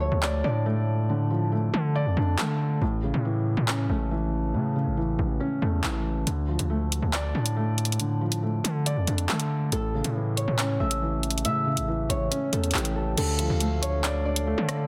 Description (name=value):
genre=hip hop, drill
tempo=139 BPM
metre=4/4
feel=half-time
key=D harmonic minor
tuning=A4 = 439 Hz
part: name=Celtic harp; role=melody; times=0.0-2.3, 9.7-14.9 s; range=G4 to E5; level=-33 LUFS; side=equal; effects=digital delay
part: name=felt-muted upright piano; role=accompaniment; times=0.0-14.9 s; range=A2 to D5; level=-31 LUFS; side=equal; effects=none
part: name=distorted 808-style bass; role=bass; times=0.0-14.9 s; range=A1 to D3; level=-29 LUFS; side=equal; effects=distortion
part: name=drill drum kit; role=drums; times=0.2-14.8 s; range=crash cymbal, handclaps, hi-hat, rim click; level=-32 LUFS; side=equal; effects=none
part: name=glass harmonica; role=sustained chords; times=13.2-14.9 s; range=D4 to F5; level=-38 LUFS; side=equal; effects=none
room=light reverb, small room ambience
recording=dense, heavily limited modern master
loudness=-26 LUFS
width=mono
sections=0.0-13.2 A section; 13.2-14.9 B section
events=break 0.0-6.3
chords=0.0 Dm; 2.8 A; 6.3 Dm; 9.7 A; 13.2 Dm